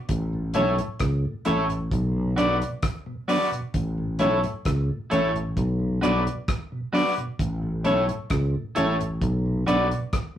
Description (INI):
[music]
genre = roots reggae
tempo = 66 BPM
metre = 4/4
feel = straight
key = A major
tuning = A4 = 440 Hz
[part]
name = sustaining fretless electric bass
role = bass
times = 0.1-9.9 s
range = A1 to C#2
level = -26 LUFS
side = equal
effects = none
[part]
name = damped 70s drum kit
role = drums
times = 0.1-10.4 s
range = hi-hat, kick drum, rim click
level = -28 LUFS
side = equal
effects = none
[part]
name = mellow tonewheel organ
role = accompaniment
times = 0.3-10.4 s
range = A2 to D4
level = -29 LUFS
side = right 1 dB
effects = slow rotary speaker
[part]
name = electric guitar at the edge of break-up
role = accompaniment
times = 0.5-9.9 s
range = E4 to D5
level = -26 LUFS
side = right 1 dB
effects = none
[part]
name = clear upright piano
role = stabs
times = 0.5-10.0 s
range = C#4 to D5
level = -26 LUFS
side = left 2 dB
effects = none
[sound]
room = wet studio reverb, RT60 0.5 s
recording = rough rehearsal-room recording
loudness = -22 LUFS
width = side -11 dB against mid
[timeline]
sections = 0.0-10.4 A section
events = none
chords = 0.1 A; 1.9 Bm; 3.7 A; 5.6 Bm; 7.4 A; 9.2 Bm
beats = | 0.09 1.00 1.92 2.83 | 3.74 4.65 5.57 6.48 | 7.39 8.30 9.22 10.13